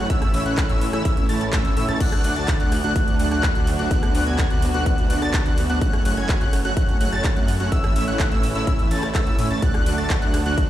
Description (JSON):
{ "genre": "EDM, festival progressive house", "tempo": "126 BPM", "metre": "4/4", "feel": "straight", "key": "unclear", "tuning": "A4 = 440 Hz", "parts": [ { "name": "warm studio string section", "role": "sustained chords", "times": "0.0-10.7 s", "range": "A2 to F#4", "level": "-30 LUFS", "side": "right 1 dB", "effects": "sidechain pumping" }, { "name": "wide unison lead", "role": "arpeggios", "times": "0.0-10.7 s", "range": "E6 to A6", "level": "-28 LUFS", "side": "left 1 dB", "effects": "wide subtle chorus, cassette tape, sidechain pumping, tape echo" }, { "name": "dense compressed supersaw", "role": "riff", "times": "0.0-10.7 s", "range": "A3 to A5", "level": "-26 LUFS", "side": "right 1 dB", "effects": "sidechain pumping, tape echo" }, { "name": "wide detuned saw bass", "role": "bass", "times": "0.0-10.7 s", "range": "F#1 to A2", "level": "-26 LUFS", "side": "equal", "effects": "chorus, sidechain pumping" }, { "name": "big-room dance drum kit", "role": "drums", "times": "0.1-10.7 s", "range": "crash cymbal, handclaps, hi-hat, ride cymbal, rim click", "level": "-31 LUFS", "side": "equal", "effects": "none" }, { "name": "electronic kick drum", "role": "drums", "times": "0.1-10.7 s", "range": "none", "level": "-20 LUFS", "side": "equal", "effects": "none" } ], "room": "light reverb", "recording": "played on a big sound system in a bare room, large studio reverb", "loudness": "-18 LUFS", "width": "side -13 dB against mid", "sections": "0.0-2.0 A section; 2.0-10.7 A section", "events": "drop 0.0-2.0, 2.0-10.7", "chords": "0.1 A; 2.0 D; 3.9 Bm/D; 5.8 F#m; 7.7 A; 9.6 D" }